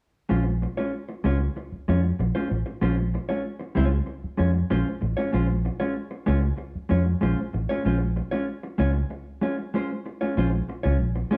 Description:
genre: funk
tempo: 95 BPM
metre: 4/4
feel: straight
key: Bb minor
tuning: A4 = 440 Hz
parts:
  - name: mellow electric guitar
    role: accompaniment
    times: 0.3-11.4 s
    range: Ab3 to Db5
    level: -29 LUFS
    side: equal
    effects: none
  - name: vintage muted fingered electric bass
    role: bass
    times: 0.3-11.2 s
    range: A1 to F2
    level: -27 LUFS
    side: equal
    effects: none
room: moderate stone room reverb, RT60 1.1 s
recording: band playing live in one room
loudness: -26 LUFS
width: mono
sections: 0.3-10.4 A section; 10.4-11.4 B section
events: break 9.1-10.4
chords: 0.3 Bbm9

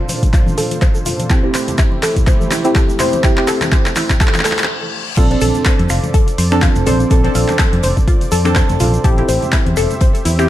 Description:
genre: deep house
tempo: 124 BPM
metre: 4/4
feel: swing 56% on 16ths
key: unclear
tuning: A4 = 440 Hz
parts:
  - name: warm analog pad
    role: sustained chords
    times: 0.0-10.5 s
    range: Bb2 to E5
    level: -26 LUFS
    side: right 2 dB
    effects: chorus, sidechain pumping
  - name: deep mellow chord stab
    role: stabs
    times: 0.0-10.5 s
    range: C4 to C5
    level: -19 LUFS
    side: equal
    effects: chorus, cassette tape, sidechain pumping, analog delay
  - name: analog pluck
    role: arpeggios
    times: 0.1-10.3 s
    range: E4 to C5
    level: -23 LUFS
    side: left 1 dB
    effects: chorus, phaser, sidechain pumping, analog delay
  - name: deep house drum kit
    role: drums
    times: 0.1-10.5 s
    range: crash cymbal, finger snaps, handclaps, hi-hat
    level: -21 LUFS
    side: equal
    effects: studio reverb
  - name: congas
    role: percussion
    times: 0.1-10.4 s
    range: none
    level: -26 LUFS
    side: left 1 dB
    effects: analog delay
  - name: egg shaker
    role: percussion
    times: 0.1-10.5 s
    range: none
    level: -31 LUFS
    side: right 3 dB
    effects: none
  - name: electronic kick drum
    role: drums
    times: 0.2-10.1 s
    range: none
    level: -13 LUFS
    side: equal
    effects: studio reverb
  - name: reverse cymbal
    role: sound effects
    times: 4.4-5.2 s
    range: none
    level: -26 LUFS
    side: left 6 dB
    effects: none
  - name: fingered electric bass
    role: bass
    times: 5.2-10.5 s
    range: E1 to F2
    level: -16 LUFS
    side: equal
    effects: none
  - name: open jazz drum kit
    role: drums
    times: 5.2-10.4 s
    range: hi-hat, snare drum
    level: -35 LUFS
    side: left 3 dB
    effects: none
room: light reverb, studio ambience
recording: echo-heavy mix, vinyl crackle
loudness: -12 LUFS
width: side -13 dB against mid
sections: 0.0-5.2 A section; 5.2-10.5 B section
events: build-up 0.0-5.2; drum fill 0.0-4.7; filter sweep on synth stab 0.0-5.2; filter sweep on synth arpeggio sound 0.0-5.2; reverse cymbal 4.4-5.2; stop 4.7-5.2; drop 5.2-10.5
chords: 0.0 Bbmaj9; 1.3 Am7; 5.2 Bbmaj9; 9.0 Am7

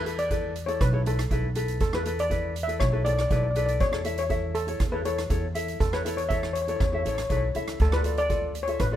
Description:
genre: calypso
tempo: 120 BPM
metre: 4/4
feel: straight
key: A major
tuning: A4 = 439 Hz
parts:
  - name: steel pan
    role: melody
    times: 0.0-9.0 s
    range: A4 to E5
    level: -29 LUFS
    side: left 2 dB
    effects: none
  - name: ukulele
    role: accompaniment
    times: 0.0-9.0 s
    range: E4 to E5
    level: -32 LUFS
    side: left 2 dB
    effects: none
  - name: upright bass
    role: bass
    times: 0.0-9.0 s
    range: A1 to E2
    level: -29 LUFS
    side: equal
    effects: none
  - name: street-band drum kit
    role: drums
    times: 0.1-8.9 s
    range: hi-hat, kick drum, rim click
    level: -30 LUFS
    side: right 1 dB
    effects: none
room: little or no reverb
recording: minimal, uncompressed stereo recording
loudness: -24 LUFS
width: side -11 dB against mid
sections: 0.0-9.0 A section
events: none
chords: 0.0 E7sus4; 3.8 A/E; 7.8 Dmadd9

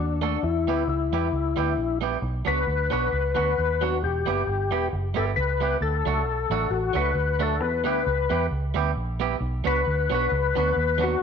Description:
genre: ska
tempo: 134 BPM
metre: 4/4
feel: swing 55% on 8ths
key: unclear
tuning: A4 = 441 Hz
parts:
  - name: percussive tonewheel organ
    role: melody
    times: 0.0-11.2 s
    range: D4 to B4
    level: -25 LUFS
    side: left 8 dB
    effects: overdrive, chorus vibrato, slow rotary speaker
  - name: vintage muted fingered electric bass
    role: bass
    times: 0.0-11.1 s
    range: E1 to E2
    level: -27 LUFS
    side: right 1 dB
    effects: none
  - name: clean electric guitar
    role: accompaniment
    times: 0.2-11.2 s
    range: F#3 to A4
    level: -28 LUFS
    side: right 11 dB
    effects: none
room: moderate echo chamber reverb, RT60 1.3 s, digital ambience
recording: 1960s-style stereo with parts hard left and right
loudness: -22 LUFS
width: side -6 dB against mid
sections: 0.0-11.2 A section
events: none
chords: 0.4 Em; 2.2 Bm; 4.0 Em; 5.8 D; 7.6 Em; 9.4 Bm

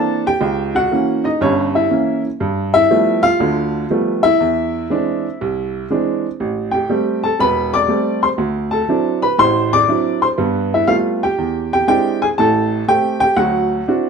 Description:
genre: solo jazz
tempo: 120 BPM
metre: 4/4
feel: swing 68% on 8ths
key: unclear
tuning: A4 = 439 Hz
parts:
  - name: clear upright piano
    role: solo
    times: 0.0-14.1 s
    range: E1 to D6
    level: -14 LUFS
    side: right 1 dB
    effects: none
room: moderate large studio reverb, RT60 1.3 s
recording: close, detailed microphones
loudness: -14 LUFS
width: side -6 dB against mid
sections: 0.0-14.1 A section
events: none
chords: 0.4 C#dim7; 2.4 G9; 4.4 Eaug7; 6.4 Am7; 8.4 D9; 10.4 G9; 11.4 E7alt; 12.4 Am7; 13.4 D9

